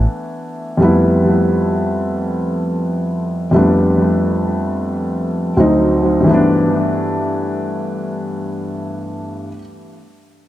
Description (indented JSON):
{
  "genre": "hip hop",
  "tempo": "free time",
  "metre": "none",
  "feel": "none",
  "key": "G mixolydian",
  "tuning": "A4 = 440 Hz",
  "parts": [
    { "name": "dark grand piano", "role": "accompaniment", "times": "0.0-9.6 s", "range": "D2 to E4", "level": "-14 LUFS", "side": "equal", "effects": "analog delay" }
  ],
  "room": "moderate spring reverb, RT60 1.7 s",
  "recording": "echo-heavy mix",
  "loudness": "-14 LUFS",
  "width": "side -14 dB against mid",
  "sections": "0.0-6.3 A section; 6.3-9.0 B section",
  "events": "none",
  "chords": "0.0 G69 (rootless); 0.8 Fmaj9#11; 5.6 D7b9; 6.3 G69"
}